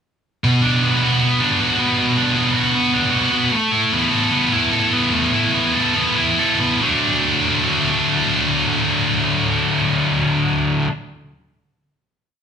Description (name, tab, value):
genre	rock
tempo	132-155 BPM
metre	4/4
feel	straight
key	D major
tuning	A4 = 440 Hz
part	scooped high-gain guitar	solo	0.4-10.9 s	B2 to A4	-15 LUFS	equal	distortion
room	moderate large studio reverb, RT60 1.1 s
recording	band playing live in one room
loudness	-15 LUFS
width	side -7 dB against mid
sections	0.4-6.8 pre-chorus; 6.8-10.5 final chord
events	slowing down 3.5-6.8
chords	0.4 Bm; 3.5 Asus2; 6.8 D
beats	| 0.44 0.82 1.21 1.60 | 1.98 2.37 2.76 3.15 | 3.54 3.92 4.32 4.71 | 5.12 5.53 5.95 6.39 | 6.84 7.29 7.75 8.20 | 8.66 9.11 9.57 10.02